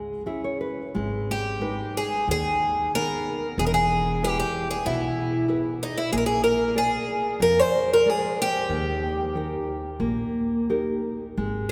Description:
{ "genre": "fado-style ballad", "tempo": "92 BPM", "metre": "4/4", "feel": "rubato", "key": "G# harmonic minor", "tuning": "A4 = 439 Hz", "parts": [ { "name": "picked twelve-string acoustic guitar", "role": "melody", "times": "0.0-11.7 s", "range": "D#4 to B#4", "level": "-25 LUFS", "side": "equal", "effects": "none" }, { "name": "nylon-string guitar", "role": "accompaniment", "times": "0.0-11.7 s", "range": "B2 to E5", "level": "-31 LUFS", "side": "equal", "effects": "none" }, { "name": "upright bass", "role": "bass", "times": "0.0-11.7 s", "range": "E1 to E#2", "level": "-36 LUFS", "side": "equal", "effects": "none" } ], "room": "wet cathedral reverb, RT60 5.0 s", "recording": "recorded in a church or concert hall", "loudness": "-25 LUFS", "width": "mono", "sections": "1.0-11.7 A section", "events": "nylon-string guitar fill 0.0-1.0", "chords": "0.0 C#m; 1.0 G#m; 3.6 E; 6.1 A#7; 8.7 D#", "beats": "0.28 | 0.96 1.62 2.29 2.94 | 3.58 4.22 4.86 5.49 | 6.12 6.76 7.40 8.04 | 8.70 9.35 10.01 10.69 | 11.37" }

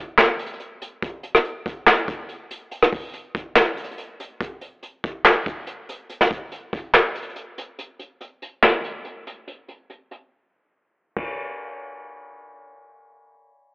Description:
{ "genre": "hip hop", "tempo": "142 BPM", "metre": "4/4", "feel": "half-time", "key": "none", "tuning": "none", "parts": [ { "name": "vintage brush drum kit", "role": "drums", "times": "0.2-11.3 s", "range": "handclaps, hi-hat, kick drum, ride cymbal, rim click, snare drum", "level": "-18 LUFS", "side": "equal", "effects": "none" } ], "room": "light reverb", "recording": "dry, gritty hardware recording, low-pass filter, telephone sound", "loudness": "-19 LUFS", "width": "side -24 dB against mid", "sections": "0.0-4.4 A section; 4.4-11.2 B section; 11.2-13.7 C section", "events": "drums muted 10.3-11.2", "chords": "none", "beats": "0.18 0.60 | 1.02 1.45 1.87 2.29 | 2.71 3.14 3.56 3.98 | 4.41 4.83 5.25 5.67 | 6.10 6.52 6.94 7.36 | 7.79 8.21 8.63 9.05 | 9.48 9.90 10.32 10.74 | 11.17" }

